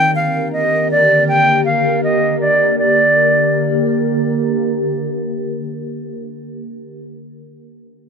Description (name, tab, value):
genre	hip hop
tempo	160 BPM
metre	4/4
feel	half-time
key	G minor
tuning	A4 = 440 Hz
part	silver concert flute	melody	0.0-3.9 s	D5 to G5	-14 LUFS	equal	low-pass filter, tape echo
part	ethereal airy pad	sustained chords	0.0-6.5 s	D3 to Bb4	-18 LUFS	equal	ensemble chorus, built-in reverb, low-pass filter
room	light reverb, studio reverb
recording	none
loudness	-13 LUFS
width	side -5 dB against mid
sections	0.0-2.8 A section; 2.8-5.8 B section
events	filter sweep 0.0-2.8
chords	0.0 Gm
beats	0.16 0.53 0.91 | 1.28 1.66 2.03 2.41 | 2.78 3.16 3.53 3.91 | 4.28 4.66 5.03 5.41